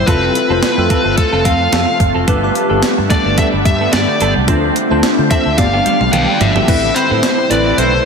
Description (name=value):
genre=1980s-style pop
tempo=109 BPM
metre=4/4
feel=swing 55% on 16ths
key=unclear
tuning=A4 = 440 Hz
part: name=bluesy overdriven lead guitar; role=melody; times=0.0-8.1 s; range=A4 to G5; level=-16 LUFS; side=left 2 dB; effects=distortion, slapback echo, ping-pong delay
part: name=glassy digital keys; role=accompaniment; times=0.0-8.1 s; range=A3 to B5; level=-18 LUFS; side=left 1 dB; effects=chorus, slapback echo
part: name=shimmering ambient pad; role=sustained chords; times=0.0-8.1 s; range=C3 to G4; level=-21 LUFS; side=right 1 dB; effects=chorus, built-in reverb
part: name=vintage muted fingered electric bass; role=bass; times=0.0-8.0 s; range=F1 to D3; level=-19 LUFS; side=equal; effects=none
part: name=semi-hollow electric guitar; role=riff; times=0.1-8.0 s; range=F3 to B4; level=-21 LUFS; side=right 4 dB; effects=analog chorus, slapback echo
part: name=clean 12-bit digital drum machine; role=drums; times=0.1-7.9 s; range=crash cymbal, hi-hat, kick drum, snare drum, toms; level=-17 LUFS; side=right 1 dB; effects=overdrive
room=moderate lush hall reverb, RT60 2.7 s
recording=big arena sound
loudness=-11 LUFS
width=side -5 dB against mid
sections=0.0-6.7 A section; 6.7-8.1 B section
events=drum fill 5.6-6.7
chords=0.1 F; 2.3 Gadd9; 4.5 Dm7; 5.6 G; 6.7 Amadd9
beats=| 0.08 0.63 1.18 1.73 | 2.28 2.83 3.38 3.93 | 4.48 5.03 5.58 6.13 | 6.68 7.23 7.78